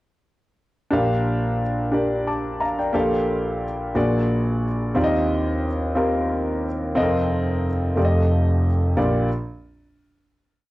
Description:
slow gospel; 60 BPM (dotted quarters); 6/8; straight; Bb major; A4 = 440 Hz
clear concert grand piano; solo; 0.9-9.3 s; F1 to D6; -19 LUFS; equal; cassette tape
moderate studio reverb, RT60 0.6 s; home recording on cassette; -19 LUFS; side -17 dB against mid
0.9-9.0 verse; 9.0-10.7 final chord
0.9 Bb6; 4.0 Bbaug7; 5.0 Eb69; 7.0 F7sus4; 8.0 F9; 9.0 Bb6
| 0.92 1.93 | 2.94 3.95 | 4.96 5.96 | 6.97 7.97 | 8.97

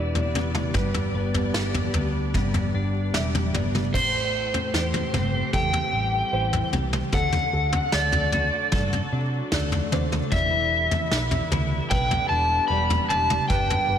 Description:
post-rock; 75 BPM; 4/4; straight; E minor; A4 = 436 Hz
muted studio string section; sustained chords; 0.0-14.0 s; D3 to D5; -36 LUFS; equal
felt-muted upright piano; arpeggios; 0.0-14.0 s; A4 to E5; -35 LUFS; right 3 dB; slapback echo, tape echo
twelve-string electric guitar; arpeggios; 0.0-14.0 s; G2 to B4; -32 LUFS; left 3 dB; analog chorus, slapback echo, tape echo
hollow-body short-scale picked electric bass; bass; 0.0-14.0 s; E1 to C3; -27 LUFS; equal
vintage brush drum kit; drums; 0.2-13.9 s; crash cymbal, kick drum, snare drum, toms; -26 LUFS; equal
overdriven slide guitar; melody; 3.9-14.0 s; C5 to B5; -24 LUFS; equal; tape echo
moderate lush hall reverb, RT60 2.5 s; big arena sound; -21 LUFS; side -9 dB against mid
0.0-3.9 A section; 3.9-14.0 B section
0.0 Em7; 3.9 Am7; 7.1 D; 10.3 Em7
| 0.75 1.55 2.35 3.15 | 3.94 4.74 5.54 6.34 | 7.14 7.93 8.73 9.53 | 10.32 11.12 11.92 12.71 | 13.51

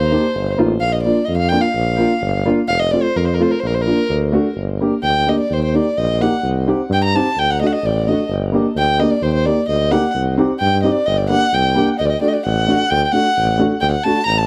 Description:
klezmer; 129 BPM; 2/4; straight; Bb major, G harmonic minor from 4.6 s; A4 = 440 Hz
dark violin; melody; 0.0-14.5 s; Bb4 to Bb5; -21 LUFS; equal; tape echo
clear tuba; bass; 0.0-14.5 s; F1 to G2; -22 LUFS; equal
dark upright piano; accompaniment; 0.1-14.2 s; A3 to G4; -20 LUFS; equal
moderate studio reverb, RT60 0.5 s; -17 LUFS; mono
0.0-4.6 A section; 4.6-12.0 B section; 12.0-14.5 C section
speeding up 0.0-14.5
0.0 Eb; 0.8 Bb; 2.7 F; 3.6 Bb; 4.1 D; 4.6 Gm; 5.5 Eb; 6.4 Cm; 7.4 D; 8.3 Gm; 9.2 Eb; 10.2 Cm; 11.1 Gm; 12.0 D
0.35 | 0.82 1.28 | 1.75 2.22 | 2.69 3.16 | 3.62 4.09 | 4.56 5.03 | 5.50 5.97 | 6.44 6.90 | 7.37 7.84 | 8.30 8.77 | 9.23 9.69 | 10.15 10.61 | 11.07 11.53 | 11.99 12.45 | 12.91 13.36 | 13.82 14.27

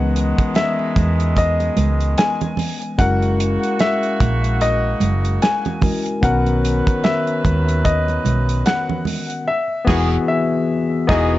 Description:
lush 1970s-style soul; 74 BPM; 4/4; swing 58% on 16ths; B major; A4 = 440 Hz
warm baby grand piano; melody; 0.0-11.4 s; D#5 to G#5; -23 LUFS; left 2 dB; tape echo
barky tine electric piano; accompaniment; 0.0-11.4 s; D#3 to B4; -22 LUFS; left 3 dB; overdrive
clear horn section; stabs; 0.0-11.3 s; B2 to B4; -26 LUFS; right 3 dB
hollow-body short-scale fingered electric bass; bass; 0.0-11.4 s; E1 to E2; -19 LUFS; right 1 dB
damped 70s drum kit; drums; 0.2-11.4 s; crash cymbal, hi-hat, kick drum, snare drum; -20 LUFS; right 1 dB
congas; percussion; 0.5-9.3 s; -25 LUFS; right 5 dB
light reverb, small room reverb; nothing above 7.8 kHz; -16 LUFS; side -15 dB against mid
0.0-11.4 A section
band accent 9.5-11.4
0.0 C#m9; 3.0 F#9; 6.2 Bmaj9; 9.5 Emaj9
0.56 1.37 2.18 | 2.99 3.80 4.61 5.42 | 6.23 7.04 7.85 8.66 | 9.47 10.28 11.09

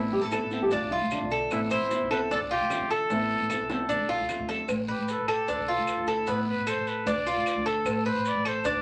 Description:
latin, Cuban son and guajira; 151 BPM; 4/4; straight; A minor; A4 = 440 Hz
breathy trumpet; melody; 0.0-8.8 s; E4 to D5; -34 LUFS; equal
flamenco guitar; accompaniment; 0.0-4.7 s; D3 to F4; -37 LUFS; equal
upright bass; bass; 0.0-8.8 s; A1 to E2; -36 LUFS; equal
nylon-string guitar; second line; 0.1-1.4 s; D4 to B4; -32 LUFS; equal
bongos and cowbell; percussion; 0.1-8.8 s; -40 LUFS; equal
Cuban tres; arpeggios; 0.3-8.8 s; B3 to C5; -31 LUFS; equal
claves; percussion; 0.3-8.7 s; -40 LUFS; equal
guiro; percussion; 0.3-8.8 s; -46 LUFS; equal
maracas; percussion; 0.3-8.8 s; -49 LUFS; equal
wet small room reverb, RT60 0.5 s; -28 LUFS; mono
0.0-4.7 A section; 4.7-8.8 B section
drum fill 3.7-4.7; trumpet solo 4.7-8.8
0.0 Amadd9; 0.7 Dm; 1.5 Amadd9; 2.3 Dm; 3.1 Amadd9; 3.9 Dm; 4.7 Asus2; 5.5 Dm; 6.3 Asus2; 7.1 Dm; 7.9 Asus2
0.33 0.72 1.12 | 1.51 1.91 2.31 2.70 | 3.10 3.50 3.89 4.29 | 4.68 5.08 5.48 5.88 | 6.27 6.67 7.07 7.46 | 7.86 8.26 8.65

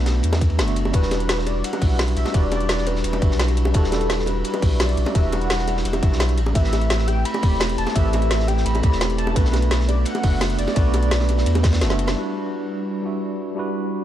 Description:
liquid drum and bass; 171 BPM; 4/4; straight; E minor; A4 = 437 Hz
tine electric piano; accompaniment; 0.0-14.0 s; G3 to E5; -25 LUFS; right 1 dB; fast stereo tremolo, low-pass filter, tape echo
warm sub bass; bass; 0.0-12.2 s; E1 to E2; -21 LUFS; equal
crunchy breakbeat drum kit; drums; 0.1-12.2 s; hi-hat, ride cymbal, snare drum; -33 LUFS; equal; high-pass filter on cymbals, high-pass filter on hats, high-pass filter on snare, high-pass filter on room
drum and bass drum kit; drums; 0.1-12.1 s; hi-hat, snare drum; -27 LUFS; equal
bongos; percussion; 0.1-12.1 s; -31 LUFS; equal
electronic kick drum; drums; 0.4-11.7 s; -19 LUFS; equal
warm velvety synth lead; melody; 0.9-11.8 s; A4 to B5; -28 LUFS; equal; chorus, vintage 12-bit sampler grit, ping-pong delay
warm analog pad; sustained chords; 12.2-14.0 s; G3 to D5; -30 LUFS; right 4 dB; chorus, vintage 12-bit sampler grit, sidechain pumping
light reverb, small room ambience; dark, warm production; -18 LUFS; side -12 dB against mid
0.0-12.2 A section; 12.2-14.0 B section
drum fill 11.6-12.2; filter sweep on tine electric piano 12.2-14.0; filter sweep on analog synth pad 12.2-14.0
0.0 Bm7; 0.9 Em9; 6.4 Am9; 9.4 Bm7; 12.2 Em9
0.24 0.59 | 0.94 1.29 1.64 1.99 | 2.34 2.69 3.04 3.40 | 3.75 4.10 4.45 4.80 | 5.15 5.50 5.85 6.20 | 6.55 6.90 7.25 7.61 | 7.96 8.31 8.66 9.01 | 9.36 9.71 10.06 10.41 | 10.76 11.12 11.47 11.82 | 12.17 12.52 12.87 13.22 | 13.57 13.92

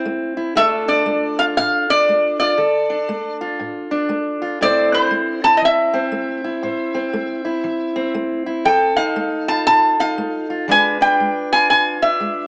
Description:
acoustic country blues, solo or duo; 119 BPM; 4/4; swing 62% on 8ths; A minor; A4 = 445 Hz
fingerpicked steel-string acoustic guitar; accompaniment; 0.0-12.5 s; A2 to C5; -24 LUFS; equal; cassette tape
lap resonator guitar; melody; 0.6-12.5 s; C5 to A5; -18 LUFS; equal; cassette tape
moderate spring reverb, RT60 1.6 s, small room ambience; home recording on cassette, small speaker sound; -18 LUFS; mono
0.0-12.5 A section
0.0 Am; 0.6 Dm; 4.6 Am; 8.7 F7; 10.7 E7b9
0.06 | 0.56 1.07 1.57 2.08 | 2.58 3.09 3.60 4.10 | 4.61 5.11 5.62 6.12 | 6.63 7.13 7.64 8.15 | 8.65 9.16 9.67 10.18 | 10.68 11.19 11.70 12.21

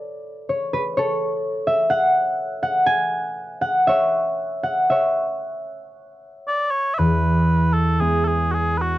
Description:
celtic folk, Celtic slow air; 57-64 BPM; 3/4; rubato; E mixolydian; A4 = 440 Hz
concert harp; accompaniment; 0.0-9.0 s; E2 to G#5; -19 LUFS; equal
mellow small bagpipes; melody; 6.5-9.0 s; F#4 to E5; -21 LUFS; right 1 dB
light reverb; dry, close 1970s-style studio recording; -18 LUFS; side -15 dB against mid
0.0-7.0 A section; 7.0-9.0 B section
harp solo 0.0-7.0
0.0 N.C.; 7.0 E
0.02 | 0.98 1.92 2.88 | 3.88 4.91 5.96 | 7.00 8.02

